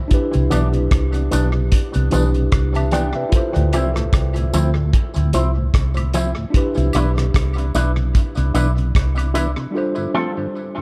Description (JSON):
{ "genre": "lovers rock reggae", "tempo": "75 BPM", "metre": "4/4", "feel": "swing 56% on 16ths", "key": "C major", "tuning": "A4 = 442 Hz", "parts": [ { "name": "tine electric piano", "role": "accompaniment", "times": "0.0-10.8 s", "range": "G3 to A5", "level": "-27 LUFS", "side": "equal", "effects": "overdrive, tape echo" }, { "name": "cloth-damped thuddy drum kit", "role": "drums", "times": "0.1-9.6 s", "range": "hi-hat, kick drum, rim click", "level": "-22 LUFS", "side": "equal", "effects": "tape echo" }, { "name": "mellow tonewheel organ", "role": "accompaniment", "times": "0.3-10.8 s", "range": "D2 to E4", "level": "-31 LUFS", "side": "equal", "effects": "chorus vibrato, slow rotary speaker, tape echo" }, { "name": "vintage muted fingered electric bass", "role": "bass", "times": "0.4-9.5 s", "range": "B1 to D2", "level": "-21 LUFS", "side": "equal", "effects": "none" }, { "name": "electric guitar with an envelope filter", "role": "stabs", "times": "0.5-10.3 s", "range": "E3 to B4", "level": "-28 LUFS", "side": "equal", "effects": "subtle chorus, tape echo" }, { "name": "tambourine and woodblock", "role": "percussion", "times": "0.5-9.6 s", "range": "none", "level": "-37 LUFS", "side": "equal", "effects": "tape echo" } ], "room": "light reverb", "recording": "dark, warm production", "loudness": "-18 LUFS", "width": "mono", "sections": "0.0-10.8 A section", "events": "break 9.8-10.8", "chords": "0.1 Cmaj9; 3.3 Dm9; 6.5 Cmaj9; 9.8 G9sus4", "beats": "| 0.12 0.92 1.73 2.53 | 3.33 4.13 4.94 5.74 | 6.54 7.35 8.15 8.95 | 9.75 10.55" }